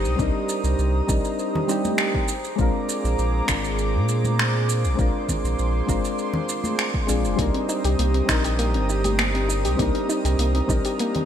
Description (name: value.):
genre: sunset chillout.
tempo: 100 BPM.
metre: 4/4.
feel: straight.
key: C minor.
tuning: A4 = 441 Hz.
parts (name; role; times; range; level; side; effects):
soft electric-piano-like synth keys; accompaniment; 0.0-11.3 s; G3 to Bb4; -26 LUFS; moving between left 6 dB and right 3 dB; chorus, auto-pan, digital delay.
airy breathy pad; sustained chords; 0.0-11.3 s; G4 to Eb6; -29 LUFS; right 1 dB; chorus, vintage 12-bit sampler grit.
warm sub bass; bass; 0.0-10.8 s; F1 to Bb2; -23 LUFS; equal; none.
deep house drum kit; drums; 0.0-11.3 s; finger snaps, hi-hat, shaker; -28 LUFS; right 1 dB; overdrive, gated reverb.
electronic kick drum; drums; 0.2-10.8 s; none; -26 LUFS; equal; overdrive.
congas; percussion; 1.6-11.3 s; none; -30 LUFS; left 2 dB; none.
soft round pluck; arpeggios; 7.4-11.3 s; Bb3 to G4; -28 LUFS; left 1 dB; chorus, digital delay.
room: moderate lush hall reverb, RT60 2.6 s.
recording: bright 1980s-style digital production.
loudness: -20 LUFS.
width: side -9 dB against mid.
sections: 0.0-11.3 A section.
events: none.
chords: 0.0 Cm7; 2.3 Bb9; 7.4 Cm7.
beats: | 0.19 0.79 1.39 1.99 | 2.59 3.19 3.79 4.39 | 4.99 5.59 6.19 6.79 | 7.39 7.99 8.59 9.19 | 9.79 10.39 10.99.